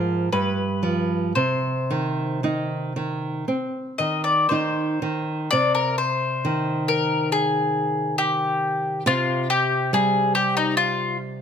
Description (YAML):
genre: romantic duo for mandolin and classical guitar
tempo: 55-72 BPM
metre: 4/4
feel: rubato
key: C minor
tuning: A4 = 440 Hz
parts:
  - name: mandolin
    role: melody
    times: 0.0-11.2 s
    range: Eb4 to Eb5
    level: -22 LUFS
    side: left 4 dB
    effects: none
  - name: nylon-string guitar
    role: accompaniment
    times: 0.0-11.4 s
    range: G2 to Eb4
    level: -24 LUFS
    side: right 2 dB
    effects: none
room: moderate recital hall reverb, RT60 1.7 s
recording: close, detailed microphones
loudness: -20 LUFS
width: side -7 dB against mid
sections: 0.0-5.5 A section; 5.5-11.4 A section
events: none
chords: 0.3 G7; 1.4 Cm; 9.1 Csus4